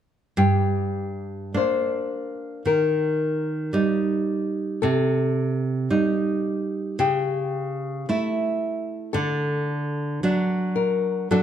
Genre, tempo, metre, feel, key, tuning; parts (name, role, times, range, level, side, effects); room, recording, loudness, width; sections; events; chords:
romantic duo for nylon-string guitar and classical guitar; 55 BPM; 4/4; rubato; G minor; A4 = 440 Hz
nylon-string guitar; melody; 0.4-11.4 s; G4 to C5; -25 LUFS; left 6 dB
nylon-string guitar; accompaniment; 0.4-11.4 s; G2 to E4; -23 LUFS; right 2 dB
moderate recital hall reverb, RT60 1.5 s; dark, warm production; -22 LUFS; side -9 dB against mid
0.4-11.4 A section
0.4 Gm; 2.7 Eb; 4.8 Am7b5/C; 7.0 A7/C#; 9.1 D